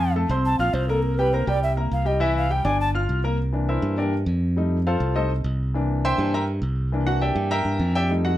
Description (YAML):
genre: Afro-Cuban jazz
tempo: 204 BPM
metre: 4/4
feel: straight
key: C mixolydian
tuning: A4 = 440 Hz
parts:
  - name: alto ocarina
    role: melody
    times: 0.0-2.9 s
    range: A4 to A5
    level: -25 LUFS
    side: right 1 dB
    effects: none
  - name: clear grand piano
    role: accompaniment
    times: 0.0-8.4 s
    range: E3 to F6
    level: -25 LUFS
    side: left 2 dB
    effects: none
  - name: modern bright fingered electric bass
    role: bass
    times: 0.0-8.4 s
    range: G1 to G2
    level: -23 LUFS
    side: equal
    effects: none
room: light reverb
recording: none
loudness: -20 LUFS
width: side -14 dB against mid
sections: 0.0-3.4 A section; 3.4-8.4 A section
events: ocarina solo 0.0-3.4; grand piano solo 3.4-8.4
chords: 0.0 F; 1.0 C9; 2.8 G5; 3.4 C9; 4.6 F9; 5.7 C9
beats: 0.15 0.45 0.74 | 1.04 1.33 1.63 1.92 | 2.21 2.51 2.80 3.10 | 3.39 3.69 3.98 4.27 | 4.57 4.86 5.16 5.45 | 5.74 6.04 6.33 6.62 | 6.92 7.21 7.50 7.80 | 8.09